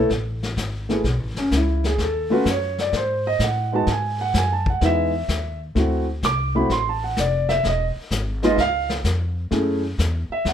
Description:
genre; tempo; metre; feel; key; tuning
jazz piano trio; 127 BPM; 4/4; swing 68% on 8ths; unclear; A4 = 441 Hz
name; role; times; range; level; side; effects
warm concert grand piano; melody; 0.0-10.5 s; G#3 to D6; -21 LUFS; right 1 dB; none
upright bass; bass; 0.0-10.5 s; E1 to A2; -24 LUFS; equal; none
vintage brush drum kit; drums; 0.1-10.5 s; brushed snare drum, hi-hat, kick drum, snare drum; -28 LUFS; left 3 dB; none
room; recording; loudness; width
light reverb; none; -19 LUFS; side -9 dB against mid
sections
0.0-10.5 A section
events
grand piano solo 0.0-10.5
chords
0.1 F#m9 (rootless); 2.0 D#m7b5; 2.9 G#5; 3.9 Emaj9; 5.8 D9; 7.6 Emaj7; 8.6 C#; 9.5 F#m7

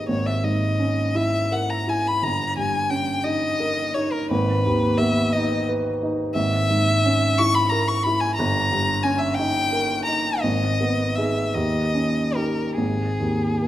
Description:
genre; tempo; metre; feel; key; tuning
classical, romantic duo for violin and grand piano; 47-62 BPM (dotted quarters); 6/8; rubato; G# minor; A4 = 442 Hz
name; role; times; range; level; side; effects
rich violin; melody; 0.0-13.7 s; G#4 to C#6; -23 LUFS; left 2 dB; none
dark grand piano; accompaniment; 0.0-13.7 s; G1 to B4; -22 LUFS; right 1 dB; none
room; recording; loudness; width
wet recital hall reverb, RT60 1.8 s; none; -20 LUFS; side -13 dB against mid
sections
0.0-13.7 A section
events
none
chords
0.1 A#m7b5/G#; 2.2 D#7/G; 4.3 G#m; 6.3 A#m7b5/G#; 8.4 D#7/G; 10.4 G#m; 11.5 D#7; 12.8 G#5

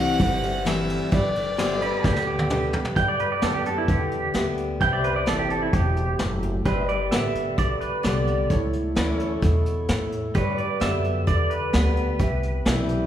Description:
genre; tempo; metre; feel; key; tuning
honky-tonk and classic country; 130 BPM; 4/4; straight; G major; A4 = 438 Hz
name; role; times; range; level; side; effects
clear fiddle; melody; 0.0-2.5 s; D5 to F#5; -28 LUFS; left 2 dB; none
clear concert grand piano; accompaniment; 0.0-13.1 s; E4 to E5; -35 LUFS; right 2 dB; none
picked steel-string acoustic guitar; accompaniment; 0.0-13.1 s; G2 to G4; -29 LUFS; left 2 dB; none
pedal steel guitar; sustained chords; 0.0-13.1 s; E4 to E5; -32 LUFS; left 1 dB; none
upright bass; bass; 0.0-13.1 s; E1 to A2; -27 LUFS; equal; none
vintage brush drum kit; drums; 0.2-13.0 s; hi-hat, kick drum, ride cymbal, snare drum, toms; -26 LUFS; equal; none
pedal steel guitar; second line; 1.8-13.1 s; E4 to G5; -26 LUFS; right 2 dB; none
room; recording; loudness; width
wet recital hall reverb, RT60 1.5 s; recorded in a church or concert hall; -21 LUFS; side -10 dB against mid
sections
0.0-3.0 A section; 3.0-13.1 B section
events
drum fill 2.0-3.0; pedal steel guitar solo 3.0-13.1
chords
0.0 C; 1.1 G; 4.8 C; 6.7 Gadd9; 8.5 A; 10.3 G; 12.2 C

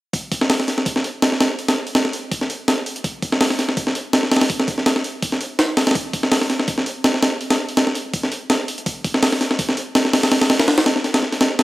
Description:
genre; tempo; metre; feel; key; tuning
drum and bass; 165 BPM; 4/4; swing 54% on 16ths; none; none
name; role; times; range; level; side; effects
breakbeat sampler-style drum kit; drums; 0.1-11.6 s; hi-hat, kick drum, snare drum; -17 LUFS; equal; high-pass filter on kick, small room reverb, high-pass filter on hats, high-pass filter on snare
room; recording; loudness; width
light reverb; dry, gritty hardware recording; -17 LUFS; side -17 dB against mid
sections
0.1-11.6 A section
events
none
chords
none

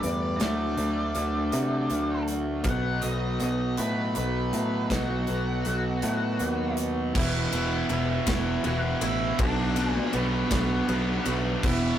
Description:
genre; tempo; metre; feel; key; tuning
quiet-loud alternative rock; 53 BPM (dotted quarters); 6/8; straight; unclear; A4 = 442 Hz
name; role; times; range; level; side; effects
octave-fuzz lead guitar; melody; 0.0-12.0 s; B3 to F#5; -32 LUFS; left 1 dB; distortion
electric guitar through a small old amp; arpeggios; 0.0-7.1 s; B2 to B4; -33 LUFS; left 1 dB; none
fuzz guitar; riff; 0.0-12.0 s; G2 to B4; -31 LUFS; right 3 dB; distortion
picked electric bass; bass; 0.0-11.9 s; E1 to C3; -29 LUFS; equal; none
big rock drum kit; drums; 0.0-11.8 s; crash cymbal, hi-hat, kick drum, ride cymbal, snare drum; -31 LUFS; equal; none
distorted electric guitar; riff; 7.1-12.0 s; B2 to F#4; -35 LUFS; left 4 dB; overdrive
thick fuzz guitar; riff; 7.2-12.0 s; E2 to B3; -30 LUFS; right 1 dB; distortion
room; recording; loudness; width
moderate booth ambience, RT60 0.3 s; rough rehearsal-room recording, tube saturation; -24 LUFS; side -10 dB against mid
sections
0.0-7.1 A section; 7.1-12.0 B section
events
half time 0.0-7.1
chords
0.4 D; 2.7 B; 7.1 Esus2; 9.4 Bm

